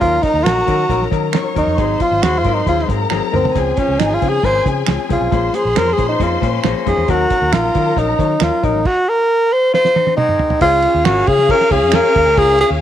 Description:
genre	uptempo 1960s-style soul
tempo	136 BPM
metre	4/4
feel	straight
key	Db major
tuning	A4 = 435 Hz
part	breathy tenor saxophone	melody	0.0-12.7 s	C4 to C5	-14 LUFS	equal	none
part	warm studio string section	second line	0.0-12.8 s	Db4 to Db6	-23 LUFS	left 2 dB	none
part	warm upright piano	accompaniment	0.0-12.7 s	F3 to Db5	-22 LUFS	left 13 dB	none
part	vintage muted fingered electric bass	bass	0.0-12.8 s	Ab1 to Eb3	-21 LUFS	right 1 dB	none
part	cloth-damped thuddy drum kit	drums	0.0-12.7 s	crash cymbal, hi-hat, kick drum, ride cymbal, snare drum, toms	-20 LUFS	right 3 dB	none
part	finger snap	percussion	0.5-12.0 s	none	-25 LUFS	right 11 dB	none
part	electric guitar through a small old amp	riff	6.2-7.1, 9.7-10.6 s	Ab3 to F4	-27 LUFS	left 10 dB	harmonic tremolo
room	light reverb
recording	1960s-style stereo with parts hard left and right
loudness	-13 LUFS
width	side -10 dB against mid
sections	0.0-10.6 A section; 10.6-12.8 B section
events	tenor saxophone solo 0.0-10.6; drum fill 3.1-3.6, 9.7-10.6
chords	0.0 Ebm7; 1.8 Ab7; 3.6 Dbmaj7; 5.3 Bbm7; 7.1 Ebm7; 8.9 N.C.; 10.6 Db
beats	| 0.02 0.46 0.90 1.34 | 1.79 2.23 2.67 3.11 | 3.55 4.00 4.44 4.88 | 5.32 5.76 6.20 6.64 | 7.09 7.53 7.97 8.41 | 8.85 9.29 9.73 10.18 | 10.62 11.06 11.50 11.94 | 12.38

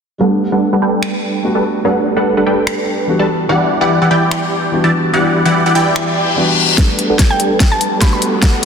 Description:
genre	future bass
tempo	146 BPM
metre	4/4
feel	swing 55% on 16ths, half-time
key	unclear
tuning	A4 = 442 Hz
part	felt-muted upright piano	accompaniment	0.2-8.7 s	E3 to F#4	-19 LUFS	equal	sidechain pumping, dub echo
part	supersaw stab	riff	0.2-8.7 s	E3 to A5	-14 LUFS	equal	phaser, sidechain pumping, low-pass filter, dub echo
part	dubstep drum kit	drums	1.0-8.7 s	finger snaps, hi-hat, snare drum	-20 LUFS	equal	overdrive, soft clipping on snare
part	reverse cymbal and riser	sound effects	6.1-8.7 s	none	-19 LUFS	left 4 dB	none
part	muted symphonic string section	sustained chords	6.8-8.7 s	G3 to A4	-25 LUFS	right 1 dB	none
part	electronic kick drum	drums	6.8-8.5 s	none	-12 LUFS	equal	none
part	mallet-like synth pluck	melody	7.3-8.2 s	G5 to B5	-19 LUFS	right 1 dB	chorus, sidechain pumping, dub echo
room	wet lush hall reverb, RT60 2.1 s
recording	dense, heavily limited modern master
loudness	-11 LUFS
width	side -6 dB against mid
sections	0.2-6.8 A section; 6.8-8.7 B section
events	filter sweep on supersaw synth 0.2-6.8; reverse cymbal 6.1-6.8; build-up 6.8-8.7; drum fill 6.8-8.7; riser 6.8-8.7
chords	0.2 Em9; 6.8 Gmaj9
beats	| 0.20 0.62 1.03 1.44 | 1.85 2.26 2.67 3.08 | 3.49 3.90 4.31 4.72 | 5.14 5.55 5.96 6.37 | 6.78 7.19 7.60 8.01 | 8.42

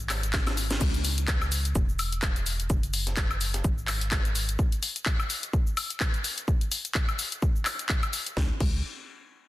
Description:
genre	piano house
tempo	127 BPM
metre	4/4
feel	swing 56% on 16ths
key	C# minor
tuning	A4 = 440 Hz
part	organ-like FM bass	bass	0.0-4.6, 8.4-8.8 s	E1 to C#2	-30 LUFS	equal	sidechain pumping
part	house drum kit	drums	0.0-8.7 s	crash cymbal, handclaps, hi-hat, shaker, snare drum, woodblock	-30 LUFS	left 2 dB	none
part	breakbeat sampler-style drum kit	drums	0.1-4.5 s	hi-hat, shaker, snare drum	-40 LUFS	right 1 dB	high-pass filter on snare, high-pass filter on perc, high-pass filter on hats, high-pass filter on room
part	electronic kick drum	drums	0.3-8.7 s	none	-26 LUFS	equal	none
room	light reverb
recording	dense, heavily limited modern master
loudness	-25 LUFS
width	side -16 dB against mid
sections	0.8-8.4 A section; 8.4-9.5 B section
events	drum fill 0.3-0.8; band accent 0.7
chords	none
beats	0.34 | 0.81 1.28 1.75 2.23 | 2.70 3.17 3.65 4.12 | 4.59 5.06 5.54 6.01 | 6.48 6.95 7.42 7.90 | 8.37

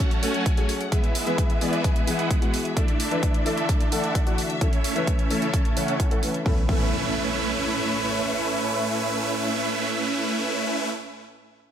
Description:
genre	EDM, festival progressive house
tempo	130 BPM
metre	4/4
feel	straight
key	A major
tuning	A4 = 444 Hz
part	felt-muted upright piano	accompaniment	0.0-10.9 s	E3 to C#5	-30 LUFS	left 3 dB	sidechain pumping, digital delay
part	rich symphonic string section	sustained chords	0.0-10.7 s	A2 to F#5	-31 LUFS	right 1 dB	sidechain pumping
part	supersaw chords	riff	0.0-10.9 s	G#3 to A5	-26 LUFS	right 2 dB	phaser, sidechain pumping, low-pass filter, digital delay
part	electronic hi-hat	drums	0.0-6.4 s	none	-32 LUFS	right 2 dB	overdrive
part	electronic kick drum	drums	0.0-6.8 s	none	-23 LUFS	equal	none
part	impact	sound effects	6.5-10.7 s	none	-34 LUFS	equal	none
room	light reverb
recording	none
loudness	-21 LUFS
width	side -9 dB against mid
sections	0.0-6.5 A section; 6.5-10.2 B section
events	none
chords	0.0 F#m; 0.9 E; 2.8 Dsus2; 4.6 A/C#; 6.5 Aadd9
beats	0.00 0.46 | 0.92 1.38 1.84 2.30 | 2.77 3.23 3.69 4.15 | 4.61 5.07 5.54 6.00 | 6.46 6.92 7.38 7.84 | 8.30 8.77 9.23 9.69

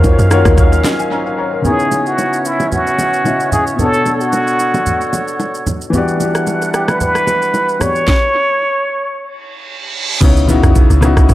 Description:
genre	amapiano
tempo	112 BPM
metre	4/4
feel	swing 55% on 16ths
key	unclear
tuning	A4 = 442 Hz
part	warm grand piano	accompaniment	0.0-11.3 s	B2 to A#5	-17 LUFS	left 3 dB	analog delay
part	warm woodwind section	sustained chords	0.0-8.1 s	D3 to F#5	-21 LUFS	right 1 dB	sidechain pumping
part	deep log drum bass	bass	0.0-0.8, 10.2-11.3 s	B1 to F#2	-11 LUFS	equal	none
part	afro-pop drum kit	drums	0.0-11.3 s	crash cymbal, kick drum, rim click, shaker, snare drum, toms	-16 LUFS	equal	analog delay
part	bongos and congas	percussion	0.0-7.9 s	none	-22 LUFS	right 1 dB	analog delay
part	trumpet with plunger mute	melody	1.7-9.4 s	E4 to C#5	-15 LUFS	equal	analog delay
part	reverse cymbal and impact	sound effects	9.5-11.3 s	none	-22 LUFS	right 2 dB	none
room	light reverb, studio reverb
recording	echo-heavy mix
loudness	-11 LUFS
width	side -15 dB against mid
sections	0.0-1.6 A section; 1.6-10.2 B section; 10.2-11.3 A section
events	drop 0.0-1.6, 10.2-11.3; grand piano fill 0.0-1.6; break 1.1-1.6; reverse cymbal 9.5-10.2; impact 10.2-11.3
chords	0.0 D#m9; 1.6 C#m9; 3.8 Bm9; 5.9 Em9; 8.1 N.C.; 10.2 C#m9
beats	0.04 0.58 1.11 | 1.65 2.18 2.72 3.25 | 3.79 4.33 4.86 5.40 | 5.93 6.47 7.00 7.54 | 8.08 8.61 9.15 9.68 | 10.22 10.76 11.29

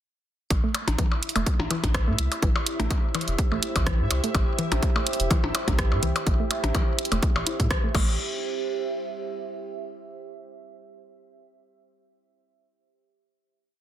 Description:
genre	minimal techno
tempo	125 BPM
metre	4/4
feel	swing 55% on 16ths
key	A minor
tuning	A4 = 443 Hz
part	saturated sub bass	bass	0.5-8.2 s	E1 to A2	-27 LUFS	equal	sidechain pumping
part	electronic kick drum	drums	0.5-8.1 s	none	-24 LUFS	equal	overdrive
part	house drum kit	drums	0.5-8.1 s	crash cymbal, hi-hat, rim click	-30 LUFS	right 2 dB	overdrive
part	percussion blips	percussion	0.5-8.1 s	none	-31 LUFS	left 3 dB	none
part	bubbling stepped-filter texture	texture	1.1-8.2 s	E4 to E5	-38 LUFS	left 1 dB	chorus, built-in reverb, sidechain pumping
part	deep dark ambient pad	texture	2.3-10.1 s	G4 to E5	-33 LUFS	right 4 dB	chorus, built-in reverb, sidechain pumping
part	hollow square pluck	riff	0.6-8.2 s	E3 to E4	-32 LUFS	right 1 dB	chorus, sidechain pumping, digital delay
room	light reverb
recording	dense, heavily limited modern master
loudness	-22 LUFS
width	side -11 dB against mid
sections	0.5-8.2 drop; 8.2-10.1 final note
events	drop 0.5-8.2; band accent 7.7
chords	0.5 Am7; 8.2 C/G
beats	| 0.51 0.99 1.47 1.95 | 2.43 2.91 3.39 3.87 | 4.35 4.83 5.31 5.79 | 6.27 6.75 7.23 7.71 | 8.19 8.67 9.15 9.63

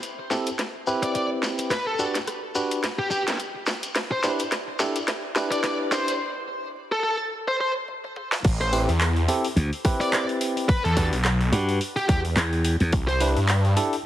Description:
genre	glitch hop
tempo	107 BPM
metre	4/4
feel	swing 57% on 16ths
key	A dorian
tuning	A4 = 440 Hz
part	drum and bass drum kit	drums	0.0-14.0 s	crash cymbal, handclaps, hi-hat, rim click, snare drum, toms	-28 LUFS	equal	overdrive, high-pass filter on snare, small room ambience, high-pass filter on hats, high-pass filter on toms, high-pass filter on cymbals
part	shekere	percussion	0.0-6.2 s	none	-35 LUFS	left 2 dB	none
part	barky tine electric piano	stabs	0.3-13.9 s	C4 to B4	-28 LUFS	equal	medium stereo tremolo, sidechain pumping, low-pass filter, digital delay
part	high-gain lead guitar	melody	1.0-13.2 s	G4 to D5	-28 LUFS	equal	distortion, digital delay
part	phased detuned saw bass	bass	8.4-13.7 s	A1 to G2	-22 LUFS	equal	phaser, overdrive
part	electronic kick drum	drums	8.4-13.1 s	none	-21 LUFS	equal	overdrive, small room ambience
part	slap bass	bass	9.6-12.9 s	D2 to G2	-22 LUFS	equal	none
room	moderate lush hall reverb, RT60 2.1 s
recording	heavily compressed radio sound, multiband compression, vinyl crackle, high-pass filter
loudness	-22 LUFS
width	side -12 dB against mid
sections	0.0-8.4 A section; 8.4-14.1 B section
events	build-up 0.0-8.4; drum fill 0.0-6.2, 7.9-8.4; filter sweep on tine electric piano 0.0-8.4; break 6.2-8.4; drop 8.4-14.1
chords	0.0 Am7 (rootless); 1.7 Dadd11; 4.0 Dsus4; 6.2 N.C.; 8.4 Am7; 10.7 Em7; 12.9 Cmaj9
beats	0.03 0.59 1.15 | 1.71 2.27 2.83 3.40 | 3.96 4.52 5.08 5.64 | 6.20 6.76 7.32 7.88 | 8.44 9.00 9.56 10.12 | 10.69 11.25 11.81 12.37 | 12.93 13.49

